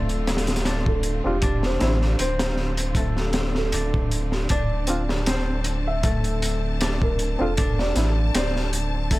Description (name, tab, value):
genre	trip hop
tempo	78 BPM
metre	4/4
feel	swing 55% on 16ths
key	D minor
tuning	A4 = 439 Hz
part	felt-muted upright piano	melody	0.0-8.9 s	G4 to E5	-31 LUFS	right 1 dB	dub echo
part	rich studio string section	sustained chords	0.0-9.2 s	D3 to A5	-32 LUFS	equal	none
part	concert harp	arpeggios	0.0-9.2 s	A3 to D4	-30 LUFS	left 1 dB	dub echo
part	warm sub bass	bass	0.0-9.2 s	D1 to A1	-25 LUFS	equal	none
part	crunchy breakbeat drum kit	drums	0.1-9.2 s	hi-hat, kick drum, snare drum	-25 LUFS	equal	none
part	barky reed electric piano	accompaniment	1.2-8.1 s	C4 to F4	-28 LUFS	equal	overdrive, fast tremolo, harmonic tremolo, tape echo
room	studio ambience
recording	none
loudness	-21 LUFS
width	side -18 dB against mid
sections	0.0-9.2 A section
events	none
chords	0.0 Dm7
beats	0.66 | 1.42 2.19 2.96 3.73 | 4.50 5.27 6.04 6.81 | 7.58 8.35 9.12